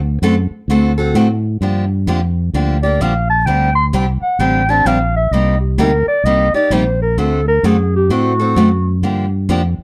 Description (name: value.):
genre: acoustic string swing (jazz manouche).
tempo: 130 BPM.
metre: 4/4.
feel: swing 63% on 8ths.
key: G minor.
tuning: A4 = 435 Hz.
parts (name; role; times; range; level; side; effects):
fingered electric bass; bass; 0.0-9.8 s; A1 to A2; -18 LUFS; equal; none.
picked steel-string acoustic guitar; accompaniment; 0.2-9.6 s; C3 to A4; -19 LUFS; equal; none.
mellow clarinet; melody; 2.8-9.0 s; F#4 to C6; -18 LUFS; equal; none.
room: little or no reverb.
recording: dark, warm production.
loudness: -15 LUFS.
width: mono.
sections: 0.0-1.6 A section; 1.6-9.8 B section.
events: clarinet solo 1.6-9.8.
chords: 0.0 D7; 1.6 Gm7; 3.5 D7sus4; 5.3 Cm7; 7.2 D7; 9.0 Gm7.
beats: 0.23 0.69 1.15 | 1.62 2.08 2.54 3.01 | 3.47 3.93 4.40 4.86 | 5.32 5.79 6.25 6.71 | 7.18 7.64 8.10 8.56 | 9.03 9.49.